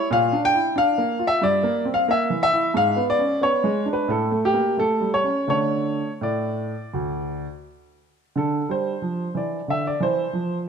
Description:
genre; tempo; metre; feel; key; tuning
classical, baroque-style suite movement for grand piano; 82-93 BPM; 4/4; rubato; D minor; A4 = 440 Hz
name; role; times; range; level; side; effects
warm baby grand piano; solo; 0.0-10.7 s; D2 to G5; -20 LUFS; equal; none
room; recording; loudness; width
wet recital hall reverb, RT60 1.6 s; close, detailed microphones; -20 LUFS; side -6 dB against mid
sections
0.0-8.4 A section; 8.4-10.7 B section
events
none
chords
0.1 Bb; 1.4 Edim/G; 2.7 G#dim; 4.1 A7; 5.5 D5; 8.4 Dm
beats
| 0.11 0.76 1.41 2.08 | 2.74 3.41 4.08 4.78 | 5.49 6.21 6.94 7.65 | 8.36 9.02 9.68 10.32

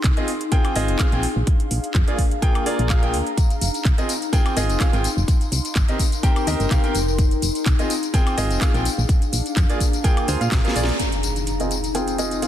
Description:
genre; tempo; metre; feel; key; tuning
piano house; 126 BPM; 4/4; swing 54% on 16ths; F dorian; A4 = 440 Hz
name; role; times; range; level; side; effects
solid FM bass; bass; 0.0-10.9 s; F1 to Bb2; -23 LUFS; equal; sidechain pumping
electronic kick drum; drums; 0.0-10.6 s; none; -18 LUFS; equal; none
house drum kit; drums; 0.0-12.5 s; handclaps, hi-hat, snare drum, tambourine, woodblock; -27 LUFS; left 1 dB; none
warbly tape-like pad; texture; 0.0-12.5 s; D4 to C6; -28 LUFS; left 3 dB; chorus, built-in reverb, sidechain pumping
bright baby grand piano; riff; 0.2-12.5 s; Bb3 to G5; -25 LUFS; right 1 dB; sidechain pumping, low-pass filter, tape echo
impact; sound effects; 11.0-12.5 s; none; -27 LUFS; equal; none
room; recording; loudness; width
light reverb; dense, heavily limited modern master; -18 LUFS; side -11 dB against mid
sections
0.0-11.0 A section; 11.0-12.5 B section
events
drum fill 10.5-11.0; band accent 10.8; impact 11.0-12.5; filter sweep on grand piano 11.0-12.5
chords
0.0 Fm7; 1.2 Bb7; 3.4 Fm7; 5.3 Cm7; 6.9 Fm7; 8.9 Bb7; 11.0 Fm7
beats
0.04 0.52 0.99 | 1.47 1.95 2.42 2.90 | 3.38 3.85 4.33 4.80 | 5.28 5.76 6.23 6.71 | 7.18 7.66 8.14 8.61 | 9.09 9.57 10.04 10.52 | 10.99 11.47 11.95 12.42

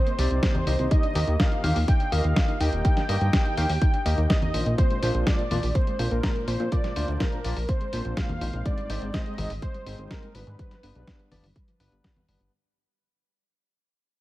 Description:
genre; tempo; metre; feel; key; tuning
italo disco; 124 BPM; 4/4; straight; unclear; A4 = 441 Hz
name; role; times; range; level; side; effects
wide unison lead; melody; 0.0-12.3 s; Bb4 to G5; -32 LUFS; equal; digital delay, shimmer reverb
soft round pluck; arpeggios; 0.1-12.5 s; D3 to Bb4; -37 LUFS; right 2 dB; chorus, digital delay, shimmer reverb
clean 12-bit digital drum machine; drums; 0.1-12.5 s; congas, hi-hat, snare drum; -30 LUFS; equal; none
overdriven tine electric piano; stabs; 0.2-12.5 s; G2 to F5; -33 LUFS; left 2 dB; fast tremolo, shimmer reverb
chorused synth bass; bass; 0.2-12.5 s; Eb1 to Bb2; -26 LUFS; equal; none
electronic kick drum; drums; 0.4-12.1 s; none; -24 LUFS; equal; none
room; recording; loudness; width
digital ambience; vinyl crackle; -22 LUFS; side -16 dB against mid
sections
0.0-12.5 A section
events
fade-out 4.8-12.5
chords
0.0 Cmadd9; 0.9 Eb; 4.8 Bbadd9; 8.7 Ab; 10.6 G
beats
0.43 | 0.91 1.40 1.88 2.36 | 2.85 3.33 3.82 4.30 | 4.78 5.27 5.75 6.24 | 6.72 7.20 7.69 8.17 | 8.65 9.14 9.62 10.11 | 10.59 11.07 11.56 12.04

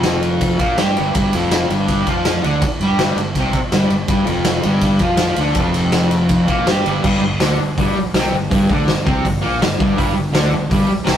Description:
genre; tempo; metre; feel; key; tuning
garage rock duo or trio; 163 BPM; 4/4; straight; G minor; A4 = 440 Hz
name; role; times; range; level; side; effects
fuzz guitar; riff; 0.0-11.2 s; F2 to G4; -17 LUFS; equal; distortion
fuzz fingered electric bass; bass; 0.0-11.2 s; F1 to G2; -22 LUFS; equal; overdrive
raw garage drum kit; drums; 0.0-11.2 s; crash cymbal, hi-hat, kick drum, ride cymbal, snare drum; -19 LUFS; equal; none
room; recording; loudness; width
moderate stone room reverb, RT60 1.1 s; rough rehearsal-room recording, tube saturation; -14 LUFS; side -10 dB against mid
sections
0.0-7.0 A section; 7.0-11.2 B section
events
none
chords
0.0 Gm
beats
0.04 0.41 0.78 | 1.15 1.51 1.88 2.25 | 2.62 2.99 3.36 3.73 | 4.10 4.47 4.83 5.20 | 5.57 5.94 6.31 6.68 | 7.04 7.41 7.78 8.15 | 8.52 8.88 9.25 9.62 | 9.98 10.35 10.72 11.08

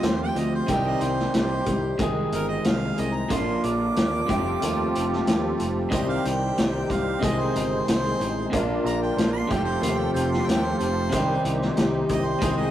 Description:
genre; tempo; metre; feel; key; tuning
folk rock and heartland rock; 92 BPM; 4/4; straight; C minor; A4 = 440 Hz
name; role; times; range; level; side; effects
clear harmonica; second line; 0.0-12.7 s; Bb4 to D6; -30 LUFS; right 2 dB; none
picked plugged-in steel-string acoustic guitar; accompaniment; 0.0-12.7 s; F2 to Ab4; -30 LUFS; left 3 dB; none
musette accordion; sustained chords; 0.0-12.7 s; G3 to C5; -32 LUFS; right 1 dB; none
electric guitar through a small old amp; riff; 0.0-12.7 s; Bb2 to Ab4; -27 LUFS; right 1 dB; none
picked electric bass; bass; 0.0-12.7 s; F1 to Eb2; -30 LUFS; equal; none
vintage drum kit; drums; 0.0-12.6 s; hi-hat, kick drum, snare drum; -27 LUFS; equal; none
room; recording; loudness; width
moderate stone room reverb, RT60 1.2 s; rough rehearsal-room recording; -21 LUFS; side -12 dB against mid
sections
0.0-12.7 A section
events
harmonica solo 0.0-12.7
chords
0.0 Fadd9; 0.7 Cm; 2.0 Ab; 3.3 Bb; 4.3 Fadd9; 5.9 Cm; 7.2 Ab; 8.5 Bb; 9.5 Fadd9; 11.1 Cm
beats
0.03 | 0.69 1.34 2.00 2.65 | 3.31 3.96 4.61 5.27 | 5.92 6.57 7.22 7.87 | 8.53 9.18 9.82 10.47 | 11.12 11.77 12.42

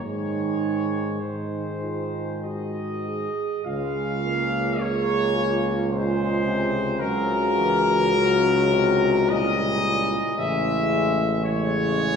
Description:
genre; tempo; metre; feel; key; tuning
classical, hymn-like piece for brass band; 48-57 BPM; 3/4; rubato; Db major; A4 = 440 Hz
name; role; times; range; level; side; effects
dark trumpet section; melody; 0.0-12.2 s; Bb4 to F5; -26 LUFS; left 3 dB; none
dark French horn section; second line; 0.0-12.2 s; Eb4 to Ab4; -27 LUFS; right 2 dB; none
clear euphonium; accompaniment; 0.0-12.2 s; Bb2 to Eb3; -31 LUFS; right 1 dB; none
warm trombone section; accompaniment; 0.0-12.2 s; Fb3 to Bb3; -31 LUFS; left 2 dB; none
clear tuba; bass; 0.0-12.2 s; A1 to Ab2; -27 LUFS; equal; none
room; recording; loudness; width
wet concert hall reverb, RT60 1.7 s; heard from further back in the room; -21 LUFS; side -6 dB against mid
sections
0.0-3.7 A section; 3.7-12.2 B section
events
none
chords
0.0 Ab; 3.7 Db; 7.0 Dbdim7; 10.4 Amaj7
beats
| 0.04 1.21 2.43 | 3.65 4.80 5.91 | 6.99 8.12 9.30 | 10.38 11.44

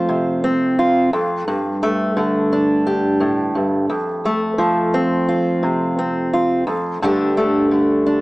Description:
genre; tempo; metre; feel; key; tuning
folk; 87 BPM; 4/4; straight; unclear; A4 = 440 Hz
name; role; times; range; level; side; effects
fingerpicked steel-string acoustic guitar; solo; 0.0-8.2 s; F2 to G4; -16 LUFS; equal; tape echo
room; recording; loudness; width
moderate studio reverb, RT60 0.7 s; small speaker sound; -16 LUFS; side -20 dB against mid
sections
0.0-8.2 A section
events
none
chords
0.0 F; 1.5 Gsus2; 3.9 F; 7.0 Gsus2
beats
0.09 0.79 | 1.48 2.17 2.86 3.56 | 4.25 4.94 5.64 6.33 | 7.02 7.72

